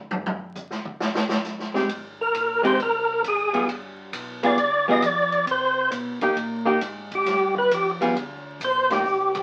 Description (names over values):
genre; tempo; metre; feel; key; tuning
soul jazz organ trio; 134 BPM; 4/4; swing 67% on 8ths; C minor; A4 = 435 Hz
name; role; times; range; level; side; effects
swinging big-band drum kit; drums; 0.1-9.4 s; hi-hat, kick drum, ride cymbal, snare drum, toms; -34 LUFS; equal; none
archtop guitar, miked and amplified; accompaniment; 1.7-9.0 s; G3 to Ab4; -25 LUFS; equal; none
tonewheel organ; bass; 1.9-9.4 s; G1 to C3; -38 LUFS; equal; none
percussive tonewheel organ; melody; 2.2-9.4 s; G4 to Eb5; -23 LUFS; equal; slow rotary speaker, overdrive, chorus vibrato
room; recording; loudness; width
wet studio reverb, RT60 0.6 s; very old 78 rpm record, vinyl crackle; -23 LUFS; mono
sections
0.0-9.1 A section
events
tonewheel organ solo 0.0-9.1; drum solo 0.0-1.9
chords
0.1 Cm; 1.9 Abmaj7; 3.7 G7b9; 5.5 Cm7; 7.3 G7